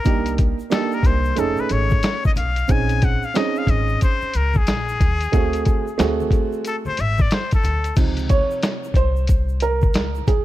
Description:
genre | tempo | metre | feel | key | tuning
hip hop, jazz-hop | 91 BPM | 4/4 | swing 62% on 16ths | Db major | A4 = 441 Hz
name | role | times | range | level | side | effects
trumpet with straight mute | melody | 0.0-8.0 s | Ab4 to Ab5 | -25 LUFS | left 4 dB | none
dark upright piano | accompaniment | 0.0-10.4 s | C3 to Db5 | -23 LUFS | right 5 dB | none
egg shaker and congas | percussion | 0.0-10.4 s | none | -35 LUFS | left 5 dB | none
upright bass | bass | 0.1-10.4 s | F1 to Eb2 | -23 LUFS | equal | none
lo-fi sampler-style drum kit | drums | 0.1-10.4 s | crash cymbal, hi-hat, kick drum, snare drum | -19 LUFS | equal | none
room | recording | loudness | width
small room ambience | dark, warm production | -17 LUFS | side -15 dB against mid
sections
0.0-8.0 A section; 8.0-10.4 A section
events
muted trumpet solo 0.0-8.0; upright piano solo 8.0-10.4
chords
0.1 Cm9; 1.4 F7alt; 2.7 Bbm11; 5.3 D7#11; 8.0 Dbmaj7

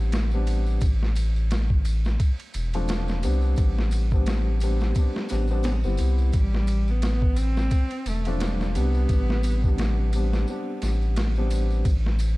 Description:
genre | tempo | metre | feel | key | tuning
trip hop | 87 BPM | 4/4 | swing 57% on 16ths | A minor | A4 = 440 Hz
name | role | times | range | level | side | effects
felt-muted upright piano | accompaniment | 0.0-11.8 s | C3 to E4 | -31 LUFS | left 1 dB | harmonic tremolo, tape echo
round analog bass | bass | 0.0-12.4 s | E1 to C2 | -23 LUFS | equal | none
boom bap sampler-style drum kit | drums | 0.1-12.4 s | kick drum, ride cymbal, snare drum | -27 LUFS | equal | overdrive
tambourine | percussion | 0.1-12.4 s | none | -46 LUFS | left 4 dB | none
warm cello | melody | 6.3-10.1 s | G3 to C4 | -33 LUFS | equal | vintage 12-bit sampler grit, tape echo
room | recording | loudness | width
small room reverb | dark, warm production | -21 LUFS | side -20 dB against mid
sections
0.0-12.4 A section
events
none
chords
0.0 Am11; 0.8 G7sus4/A; 3.6 Am11; 6.3 G7sus4/A; 9.1 Am11; 11.9 N.C.

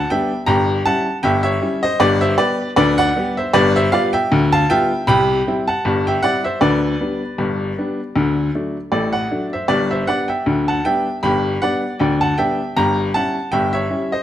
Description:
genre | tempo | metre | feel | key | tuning
ragtime piano | 78 BPM | 2/4 | swing 56% on 16ths | G major | A4 = 439 Hz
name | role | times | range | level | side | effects
clear upright piano | solo | 0.0-14.2 s | G1 to B5 | -15 LUFS | equal | none
room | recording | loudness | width
moderate recital hall reverb, RT60 1.4 s | close, detailed microphones | -15 LUFS | side -11 dB against mid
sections
0.0-14.2 A section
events
none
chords
0.5 Gdim7; 2.0 G; 3.5 G7; 5.1 C; 6.6 G/D; 8.2 D; 9.7 G; 12.8 Gdim7

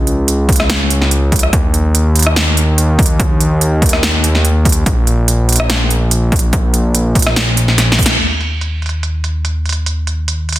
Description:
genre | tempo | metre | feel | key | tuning
future bass | 144 BPM | 4/4 | half-time | unclear | A4 = 440 Hz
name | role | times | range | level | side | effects
fat analog bass | bass | 0.0-10.6 s | Bb1 to Eb2 | -14 LUFS | equal | sidechain pumping
big-room dance drum kit | drums | 0.1-10.6 s | crash cymbal, hi-hat, rim click, snare drum | -16 LUFS | right 1 dB | overdrive, low-pass filter on hats, low-pass filter on snare, low-pass filter on cymbals, low-pass filter on room
electronic kick drum | drums | 0.5-8.1 s | none | -14 LUFS | equal | overdrive
room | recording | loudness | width
light reverb | dense, heavily limited modern master | -11 LUFS | side -15 dB against mid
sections
0.0-8.2 A section; 8.2-10.6 B section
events
drop 0.0-8.2; drum fill 7.8-8.2; band accent 8.1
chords
none

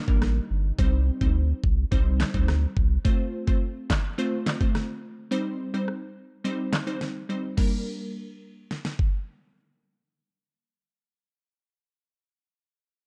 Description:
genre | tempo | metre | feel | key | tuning
dancehall | 106 BPM | 4/4 | straight | G minor | A4 = 440 Hz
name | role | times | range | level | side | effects
glassy wavetable pluck | accompaniment | 0.0-11.3 s | G3 to C5 | -32 LUFS | equal | chorus
saturated sub bass | bass | 0.1-3.0 s | G1 to D2 | -26 LUFS | equal | none
pop drum kit | drums | 0.1-9.1 s | crash cymbal, handclaps, kick drum, rim click, snare drum | -27 LUFS | equal | vintage 12-bit sampler grit
room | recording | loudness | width
little or no reverb | dark, warm production | -26 LUFS | mono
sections
0.0-7.6 A section; 7.6-9.8 B section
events
none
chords
0.0 Gm; 0.8 Cm; 3.0 F; 5.3 Cm; 7.6 Gm

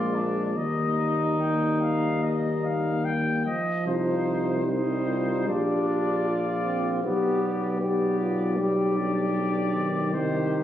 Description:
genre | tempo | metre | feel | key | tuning
classical, brass quintet | 72-79 BPM | 4/4 | rubato | Eb major, C minor from 3.9 s | A4 = 440 Hz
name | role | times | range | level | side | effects
warm trumpet | melody | 0.0-10.6 s | C5 to G5 | -32 LUFS | left 4 dB | none
warm flugelhorn | second line | 0.0-10.6 s | D4 to G4 | -31 LUFS | right 2 dB | none
mellow French horn | accompaniment | 0.0-10.6 s | Bb3 to B4 | -30 LUFS | left 4 dB | none
warm trombone | accompaniment | 0.0-10.6 s | Eb3 to D4 | -32 LUFS | right 1 dB | none
mellow tuba | bass | 0.0-10.6 s | Bb1 to Eb2 | -28 LUFS | right 1 dB | none
room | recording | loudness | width
moderate recital hall reverb, RT60 1.6 s | recorded on a phone in the room, studio reverb, compression | -23 LUFS | side -11 dB against mid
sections
0.0-3.9 A section; 3.9-10.6 B section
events
none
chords
0.0 Bb7; 0.6 Eb; 3.9 Cm; 5.5 Bb; 7.0 G/B; 10.1 Cm

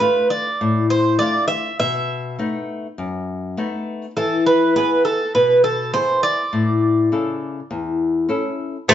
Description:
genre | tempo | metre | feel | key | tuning
greek folk | 101 BPM | 4/4 | straight | unclear | A4 = 440 Hz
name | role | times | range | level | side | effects
Greek bouzouki | melody | 0.0-8.9 s | A4 to E5 | -18 LUFS | right 2 dB | none
flamenco guitar | accompaniment | 0.0-8.9 s | E2 to A4 | -20 LUFS | left 3 dB | none
Greek bouzouki | second line | 8.9 s | A3 | -11 LUFS | right 1 dB | none
room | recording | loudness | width
wet studio reverb, RT60 0.8 s | band playing live in one room, nothing above 7.7 kHz | -17 LUFS | side -10 dB against mid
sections
0.0-8.9 A section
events
none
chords
0.0 Dm; 1.8 B7; 4.2 E; 6.5 A

